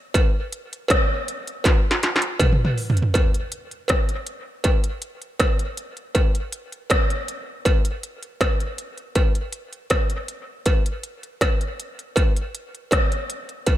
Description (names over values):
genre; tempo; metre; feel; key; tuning
reggae; 80 BPM; 4/4; straight; none; none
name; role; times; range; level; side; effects
industrial drum kit; drums; 0.1-13.8 s; hi-hat, kick drum, rim click, snare drum, toms; -20 LUFS; equal; distortion
cowbell; percussion; 0.1-13.8 s; none; -27 LUFS; right 2 dB; high-pass filter on perc, dub echo
room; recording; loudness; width
light reverb, digital ambience; none; -20 LUFS; side -13 dB against mid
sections
0.0-3.1 A section; 3.1-13.8 B section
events
drum fill 1.6-3.1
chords
none